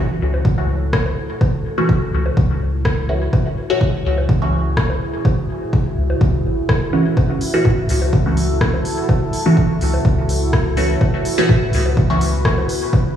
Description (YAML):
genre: dub techno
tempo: 125 BPM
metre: 4/4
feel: swing 53% on 16ths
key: F# minor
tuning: A4 = 440 Hz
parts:
  - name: deep dark ambient pad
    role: sustained chords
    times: 0.2-13.2 s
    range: E4 to B4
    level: -25 LUFS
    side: equal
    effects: chorus, built-in reverb, sidechain pumping
  - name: filtered dub chord stab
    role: stabs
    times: 0.0-12.4 s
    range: E3 to F#4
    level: -20 LUFS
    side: equal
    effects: phaser, sidechain pumping, dub echo
  - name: soft dub sub bass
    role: bass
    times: 0.2-13.0 s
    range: F#1 to C#2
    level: -20 LUFS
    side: equal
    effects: sidechain pumping
  - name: electronic bongos and toms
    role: percussion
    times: 0.3-13.0 s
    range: none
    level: -27 LUFS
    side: equal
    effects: sidechain pumping on perc, sidechain pumping on toms, dub echo
  - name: electronic kick drum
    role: drums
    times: 0.5-13.0 s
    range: none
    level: -17 LUFS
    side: equal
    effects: none
  - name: deep house drum kit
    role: drums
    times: 0.9-12.8 s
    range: hi-hat, rim click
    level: -26 LUFS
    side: left 1 dB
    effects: dub echo
room: moderate lush hall reverb, RT60 1.5 s, digital ambience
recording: played on a big sound system in a bare room, large studio reverb, studio reverb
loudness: -15 LUFS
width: side -10 dB against mid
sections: 0.0-13.2 A section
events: filter sweep on synth stab 0.0-13.2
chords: 0.0 F#m7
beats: 0.45 0.93 | 1.41 1.89 2.37 2.85 | 3.33 3.81 4.29 4.77 | 5.25 5.73 6.21 6.69 | 7.17 7.65 8.13 8.61 | 9.09 9.57 10.05 10.53 | 11.01 11.49 11.97 12.45 | 12.93